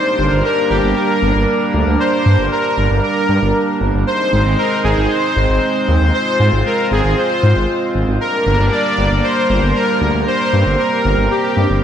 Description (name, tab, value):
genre	synthwave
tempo	116 BPM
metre	4/4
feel	straight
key	G phrygian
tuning	A4 = 441 Hz
part	soft supersaw	melody	0.0-11.8 s	G4 to D5	-17 LUFS	equal	digital delay
part	chorused pulse-width pad	sustained chords	0.0-11.8 s	G3 to C5	-18 LUFS	right 1 dB	none
part	wide detuned saw bass	bass	0.2-11.8 s	G1 to Ab2	-15 LUFS	equal	chorus, tube saturation
room	moderate lush hall reverb, RT60 2.1 s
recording	bright 1980s-style digital production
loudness	-13 LUFS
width	side -9 dB against mid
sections	0.0-11.8 A section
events	none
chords	0.0 Gm; 4.1 Ab; 8.2 Gm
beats	0.45 0.96 1.48 | 2.00 2.52 3.03 3.55 | 4.07 4.59 5.10 5.62 | 6.14 6.65 7.17 7.69 | 8.21 8.72 9.24 9.76 | 10.28 10.79 11.31 11.83